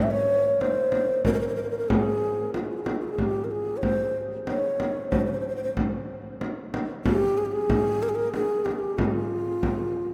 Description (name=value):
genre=Arabic maqam ensemble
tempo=93 BPM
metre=3/4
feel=straight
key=F minor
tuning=A4 = 440 Hz
part: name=breathy mellow long shakuhachi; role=melody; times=0.0-10.1 s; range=F4 to E5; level=-28 LUFS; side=equal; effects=none
part: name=frame drum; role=percussion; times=0.6-9.8 s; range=none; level=-30 LUFS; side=equal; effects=none
room=wet cathedral reverb, RT60 5.7 s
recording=in a vast, echoing space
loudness=-26 LUFS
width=mono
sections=0.0-10.1 A section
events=none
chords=none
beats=0.60 | 1.25 1.89 2.54 | 3.18 3.83 4.47 | 5.12 5.76 6.41 | 7.05 7.69 8.34 | 8.98 9.62